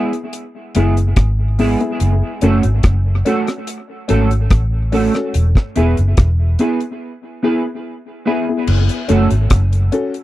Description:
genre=dub reggae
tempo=72 BPM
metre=4/4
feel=straight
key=F# minor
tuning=A4 = 440 Hz
part: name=semi-hollow electric guitar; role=accompaniment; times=0.0-9.3 s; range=G#3 to B4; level=-21 LUFS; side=right 5 dB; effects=analog chorus, tape echo
part: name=dark upright piano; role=stabs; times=0.0-10.1 s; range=B3 to A4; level=-21 LUFS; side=left 4 dB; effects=tape echo
part: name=deep reggae drum kit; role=drums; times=0.1-10.2 s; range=crash cymbal, hi-hat, kick drum, rim click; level=-16 LUFS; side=equal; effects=none
part: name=vintage muted fingered electric bass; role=bass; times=0.8-9.9 s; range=E1 to A1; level=-14 LUFS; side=equal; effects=none
room=little or no reverb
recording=dry, close 1970s-style studio recording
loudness=-13 LUFS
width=side -15 dB against mid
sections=0.0-8.7 A section; 8.7-10.2 B section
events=break 7.0-8.7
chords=0.0 E; 2.0 F#m; 5.3 E; 8.7 F#m

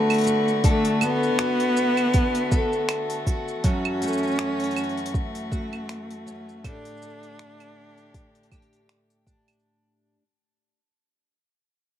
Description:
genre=folktronica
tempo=80 BPM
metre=4/4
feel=swing 56% on 16ths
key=D major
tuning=A4 = 440 Hz
part: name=clear cello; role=melody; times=0.0-8.9 s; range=A3 to D4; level=-25 LUFS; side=equal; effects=none
part: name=rich string quartet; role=sustained chords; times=0.0-9.6 s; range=D3 to G4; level=-31 LUFS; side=left 2 dB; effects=none
part: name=picked twelve-string acoustic guitar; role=arpeggios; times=0.0-10.2 s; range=F#2 to A4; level=-29 LUFS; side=equal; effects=ping-pong delay
part: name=organic electronic drum kit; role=drums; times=0.1-9.6 s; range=claves, finger snaps, hi-hat, shaker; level=-31 LUFS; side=right 3 dB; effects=overdrive
part: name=electronic kick drum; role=drums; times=0.6-9.4 s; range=none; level=-22 LUFS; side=equal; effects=overdrive
room=wet small room ambience, RT60 0.5 s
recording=none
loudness=-21 LUFS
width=side -10 dB against mid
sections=0.0-9.6 A section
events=fade-out 0.0-9.6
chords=0.0 D6; 3.6 F#m7; 6.6 A7sus4

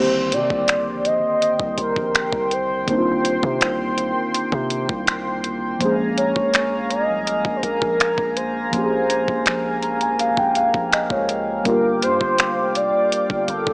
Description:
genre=contemporary R&B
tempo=82 BPM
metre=4/4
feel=straight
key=C minor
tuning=A4 = 440 Hz
part: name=warm velvety synth lead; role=melody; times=0.0-13.7 s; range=A4 to Eb5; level=-21 LUFS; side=equal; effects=chorus, tape echo
part: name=muted felt-like synth keys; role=accompaniment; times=0.0-13.7 s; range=D3 to Bb5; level=-23 LUFS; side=equal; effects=chorus
part: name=chorused pulse-width pad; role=sustained chords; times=0.0-13.7 s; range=Bb3 to D6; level=-26 LUFS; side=equal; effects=sidechain pumping
part: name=long sustained 808-style bass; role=bass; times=0.0-13.7 s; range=F1 to C3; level=-30 LUFS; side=equal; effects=none
part: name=gated 80s digital drum machine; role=drums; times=0.3-13.7 s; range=finger snaps, hi-hat, kick drum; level=-22 LUFS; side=equal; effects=none
room=little or no reverb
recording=dry, gritty hardware recording, small speaker sound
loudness=-18 LUFS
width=side -28 dB against mid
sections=0.0-13.7 A section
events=synth keys fill 9.5-11.7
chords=0.0 Cm7; 5.8 Bbm7; 11.7 Gm7

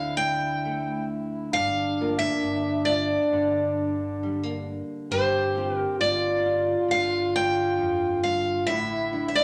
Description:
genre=acoustic folk-pop ballad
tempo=67 BPM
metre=4/4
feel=straight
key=unclear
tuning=A4 = 441 Hz
part: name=picked steel-string acoustic guitar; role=melody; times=0.0-9.4 s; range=C5 to G5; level=-28 LUFS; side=equal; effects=none
part: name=warm French horn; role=second line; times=0.0-9.4 s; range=D4 to G4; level=-30 LUFS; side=equal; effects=none
part: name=nylon-string guitar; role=accompaniment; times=0.0-9.4 s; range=D2 to Bb4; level=-36 LUFS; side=equal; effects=none
part: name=mellow fretless electric bass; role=bass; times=0.0-9.4 s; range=G1 to D2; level=-39 LUFS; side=equal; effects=none
room=wet large studio reverb, RT60 1.2 s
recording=none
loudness=-25 LUFS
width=mono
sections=0.0-9.4 A section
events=none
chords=0.0 D5; 1.5 Gm7; 5.1 G7sus4; 8.7 Asus4

